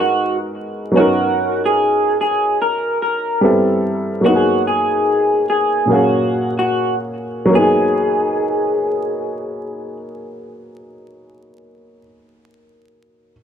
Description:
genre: hip hop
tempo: 73 BPM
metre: 4/4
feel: swing 65% on 16ths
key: G# dorian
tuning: A4 = 440 Hz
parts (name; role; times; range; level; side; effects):
- electric guitar through a small old amp; melody; 0.0-10.0 s; F#4 to A#4; -18 LUFS; equal; analog chorus, low-pass filter
- warm upright piano; accompaniment; 0.0-13.3 s; A#2 to E#5; -18 LUFS; equal; low-pass filter
room: wet studio reverb, RT60 0.6 s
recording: vinyl crackle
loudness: -14 LUFS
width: side -8 dB against mid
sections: 0.9-7.5 A section; 7.5-10.8 B section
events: none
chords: 0.0 G#m9; 0.9 Bmaj9; 3.4 Am9; 4.2 G#m9; 5.9 F#maj7/A#; 7.5 G#m9

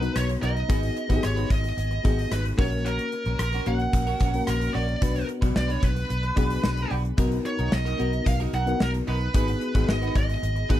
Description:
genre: 1980s-style pop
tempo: 111 BPM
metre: 4/4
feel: straight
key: unclear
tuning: A4 = 443 Hz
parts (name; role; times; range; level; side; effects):
- high-gain lead guitar; melody; 0.0-10.8 s; A#4 to F#5; -30 LUFS; right 2 dB; distortion
- mellow FM electric piano; accompaniment; 0.0-10.8 s; A#3 to A#5; -30 LUFS; left 4 dB; chorus, tremolo
- twelve-string electric guitar; riff; 0.0-10.8 s; C#4 to B4; -36 LUFS; right 7 dB; wide subtle chorus, tape echo
- vintage muted fingered electric bass; bass; 0.0-10.8 s; G#1 to B1; -27 LUFS; equal; none
- gated 80s drum kit; drums; 0.0-10.8 s; hi-hat, kick drum, rim click, snare drum; -26 LUFS; equal; none
room: little or no reverb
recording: none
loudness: -22 LUFS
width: side -12 dB against mid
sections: 0.0-10.8 A section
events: none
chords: 0.0 Bmaj7; 0.7 G#m7; 2.6 F#/A#; 5.0 Bm; 7.2 Bmaj7; 9.3 G#m7

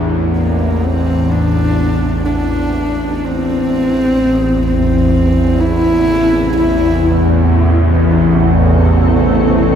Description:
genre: dark ambient drone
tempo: 63 BPM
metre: 4/4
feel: straight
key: A minor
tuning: A4 = 442 Hz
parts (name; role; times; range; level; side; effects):
- dark detuned synth bell; arpeggios; 0.0-9.8 s; C4 to G4; -33 LUFS; equal; none
- bowed-like drone; drone; 0.0-9.8 s; A1 to E2; -12 LUFS; equal; built-in reverb, phaser
- dark horsehead fiddle; melody; 0.4-7.2 s; Bb3 to E4; -16 LUFS; equal; tape echo
- granular cloud pad; sustained chords; 6.5-9.8 s; C3 to A4; -21 LUFS; equal; built-in reverb
room: wet cathedral reverb, RT60 5.7 s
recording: in a vast, echoing space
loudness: -11 LUFS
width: side -8 dB against mid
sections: 0.0-3.7 A section; 3.7-9.8 B section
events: fade-in on ambient pad 3.7-9.8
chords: 0.0 D5/A; 3.7 Am

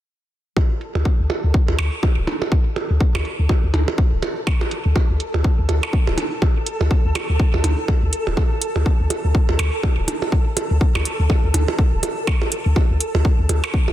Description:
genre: minimal techno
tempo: 123 BPM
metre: 4/4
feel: swing 58% on 16ths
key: unclear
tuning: A4 = 443 Hz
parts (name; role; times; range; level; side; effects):
- electronic kick drum; drums; 0.6-13.9 s; none; -17 LUFS; equal; none
- percussion blips; percussion; 0.6-13.9 s; none; -25 LUFS; right 4 dB; tape echo
- flickering grainy texture; texture; 0.9-13.9 s; A4; -30 LUFS; equal; built-in reverb, sidechain pumping
- electronic hi-hat; drums; 0.8-13.6 s; none; -27 LUFS; right 2 dB; low-pass filter on hats, low-pass filter on room
- punchy sub bass; bass; 1.0-13.9 s; D1 to D2; -19 LUFS; equal; sidechain pumping
room: little or no reverb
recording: dense, heavily limited modern master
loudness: -17 LUFS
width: side -13 dB against mid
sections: 0.6-13.9 A section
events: filter sweep on sub bass 0.6-13.9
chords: 0.6 D5

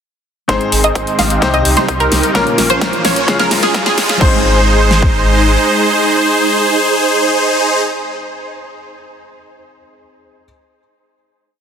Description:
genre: EDM, festival progressive house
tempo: 129 BPM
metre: 4/4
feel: straight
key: Ab major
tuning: A4 = 440 Hz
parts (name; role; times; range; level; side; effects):
- bright grand piano; accompaniment; 0.5-10.5 s; Ab2 to C5; -20 LUFS; left 3 dB; sidechain pumping, digital delay
- supersaw pad; sustained chords; 0.5-7.8 s; C3 to C5; -21 LUFS; right 1 dB; sidechain pumping
- wide unison pluck; arpeggios; 0.5-7.8 s; Ab4 to F5; -18 LUFS; right 1 dB; analog chorus, sidechain pumping, digital delay
- supersaw chords; riff; 0.5-7.8 s; Db4 to F5; -15 LUFS; right 1 dB; phaser, sidechain pumping, low-pass filter, digital delay
- saturated sub bass; bass; 0.5-5.6 s; Ab1 to Db2; -17 LUFS; equal; sidechain pumping
- big-room dance drum kit; drums; 0.5-5.1 s; kick drum, snare drum; -15 LUFS; equal; high-pass filter on kick, high-pass filter on snare
- big-room dance drum kit; drums; 0.5-4.3 s; crash cymbal, hi-hat, snare drum; -18 LUFS; left 1 dB; none
- riser; sound effects; 2.0-4.2 s; none; -26 LUFS; right 2 dB; none
room: moderate huge ambient reverb, RT60 4.9 s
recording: dense, heavily limited modern master, high-pass filter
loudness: -10 LUFS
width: side -8 dB against mid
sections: 0.5-4.2 build; 4.2-7.9 final chord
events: build-up 0.5-4.2; drum fill 0.5-4.2; filter sweep on supersaw synth 0.5-4.2; filter sweep on synth pluck 0.5-4.2; filter sweep 0.5-4.2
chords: 0.5 Ab; 1.4 Cm; 2.4 Bbm; 3.3 Db; 4.2 Ab

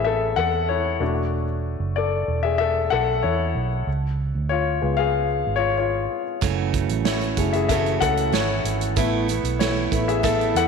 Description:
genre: piano-driven pop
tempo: 94 BPM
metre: 4/4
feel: straight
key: F# minor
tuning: A4 = 439 Hz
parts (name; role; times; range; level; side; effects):
- warm baby grand piano; accompaniment; 0.0-10.7 s; G#3 to F#5; -22 LUFS; left 8 dB; none
- vintage muted fingered electric bass; bass; 0.0-10.7 s; E1 to E2; -25 LUFS; right 3 dB; none
- picked steel-string acoustic guitar; riff; 6.4-10.7 s; F#2 to F#4; -25 LUFS; right 15 dB; none
- natural country drum kit; drums; 6.4-10.7 s; hi-hat, kick drum, snare drum; -26 LUFS; right 6 dB; none
room: moderate echo chamber reverb, RT60 1.8 s, studio ambience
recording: 1960s-style stereo with parts hard left and right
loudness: -20 LUFS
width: side -5 dB against mid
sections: 0.0-10.7 A section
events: grand piano solo 0.0-10.7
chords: 0.0 Asus2; 1.0 E7sus4; 3.9 C#7; 6.4 F#m7; 9.0 Asus2

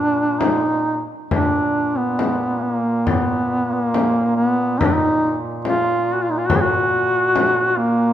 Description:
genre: caucasian folk, Caucasian lament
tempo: 69 BPM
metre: 4/4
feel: rubato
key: unclear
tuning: A4 = 440 Hz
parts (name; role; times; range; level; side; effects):
- warm duduk; melody; 0.0-8.1 s; Bb3 to Ab4; -18 LUFS; equal; none
- warm duduk; drone; 0.0-8.1 s; Bb2; -28 LUFS; right 2 dB; none
- frame drum; percussion; 0.4-7.6 s; none; -23 LUFS; left 4 dB; none
room: light reverb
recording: minimal, uncompressed stereo recording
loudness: -16 LUFS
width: side -11 dB against mid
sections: 0.0-8.1 A section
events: none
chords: none

